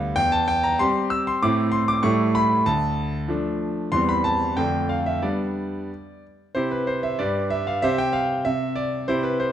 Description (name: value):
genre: classical-period piano sonatina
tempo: 95 BPM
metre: 2/4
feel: straight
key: C major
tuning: A4 = 440 Hz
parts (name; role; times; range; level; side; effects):
- bright concert grand piano; solo; 0.0-9.5 s; D2 to E6; -20 LUFS; equal; none
room: wet recital hall reverb, RT60 1.7 s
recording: dark, warm production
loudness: -20 LUFS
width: side -10 dB against mid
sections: 0.0-6.5 A section; 6.5-9.5 B section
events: none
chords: 0.2 C/E; 1.4 Am; 2.0 A7; 2.7 Dm; 3.9 C/E; 4.6 Dm/F; 5.2 G; 6.5 C; 7.2 G; 7.8 C5; 8.4 N.C.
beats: | 0.16 0.79 | 1.41 2.04 | 2.66 3.29 | 3.92 4.56 | 5.22 5.89 | 6.54 7.18 | 7.82 8.45 | 9.08